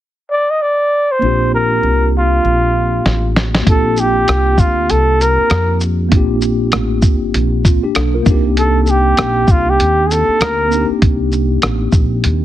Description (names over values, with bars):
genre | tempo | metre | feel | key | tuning
hip hop, jazz-hop | 98 BPM | 4/4 | swing 60% on 16ths | unclear | A4 = 440 Hz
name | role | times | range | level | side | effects
breathy flugelhorn | melody | 0.3-10.9 s | F4 to Eb5 | -14 LUFS | equal | none
mellow tine electric piano | accompaniment | 1.2-12.4 s | Bb3 to Bb4 | -18 LUFS | equal | medium stereo tremolo
upright bass | bass | 1.2-12.4 s | G1 to F2 | -16 LUFS | equal | none
lo-fi sampler-style drum kit | drums | 3.1-12.4 s | hi-hat, kick drum, rim click, shaker, snare drum | -14 LUFS | equal | none
room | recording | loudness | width
light reverb | heavily compressed radio sound | -11 LUFS | side -13 dB against mid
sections
0.0-1.2 A section; 1.2-3.7 B section; 3.7-12.4 C section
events
drum fill 3.1-3.7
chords
0.0 N.C.; 1.2 Bb69; 8.3 Cm9